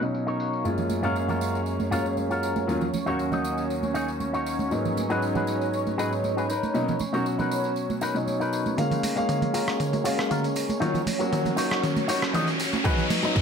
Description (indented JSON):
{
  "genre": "nu-disco, nu disco",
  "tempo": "118 BPM",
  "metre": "4/4",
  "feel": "straight",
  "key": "unclear",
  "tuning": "A4 = 440 Hz",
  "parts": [
    { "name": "warm concert grand piano", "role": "accompaniment", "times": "0.0-13.4 s", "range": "Eb2 to F5", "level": "-27 LUFS", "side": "left 1 dB", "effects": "sidechain pumping, digital delay" },
    { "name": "lush unison pad", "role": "sustained chords", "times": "0.0-13.4 s", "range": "Db4 to F5", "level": "-31 LUFS", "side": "right 2 dB", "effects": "chorus, phaser, sidechain pumping" },
    { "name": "electric guitar with an envelope filter", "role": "riff", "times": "0.0-13.4 s", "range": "D#4 to Eb5", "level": "-31 LUFS", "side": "left 1 dB", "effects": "lush chorus, low-pass filter, digital delay" },
    { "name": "dusty soul sampler-style drum kit", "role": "drums", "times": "0.0-13.4 s", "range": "hi-hat, rim click, tambourine, toms", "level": "-31 LUFS", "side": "equal", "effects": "low-pass filter on cymbals, low-pass filter on perc, low-pass filter on hats, low-pass filter on toms, low-pass filter on snare" },
    { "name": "tambourine and congas", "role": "percussion", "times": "0.7-13.4 s", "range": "none", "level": "-34 LUFS", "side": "right 7 dB", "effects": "none" },
    { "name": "fat analog bass", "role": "bass", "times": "8.8-13.4 s", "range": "Eb1 to Gb2", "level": "-38 LUFS", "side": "equal", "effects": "none" },
    { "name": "riser", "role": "sound effects", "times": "10.5-13.4 s", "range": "none", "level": "-32 LUFS", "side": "equal", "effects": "none" },
    { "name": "electronic kick drum", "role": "drums", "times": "12.8-13.4 s", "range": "none", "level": "-23 LUFS", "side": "right 1 dB", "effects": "none" }
  ],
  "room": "light reverb, digital ambience",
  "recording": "none",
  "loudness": "-23 LUFS",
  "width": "side -6 dB against mid",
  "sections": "0.0-8.8 A section; 8.8-13.4 B section",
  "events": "build-up 8.8-13.4; drum fill 8.8-13.4; filter sweep on clean electric guitar 8.8-13.4; riser 10.5-13.4",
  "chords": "0.0 Bmaj7; 0.6 Gbmaj7; 2.7 Ebm7; 4.7 Abm7; 6.5 Bmaj7; 8.8 Gbmaj7; 10.8 Ebm7; 12.9 Abm7"
}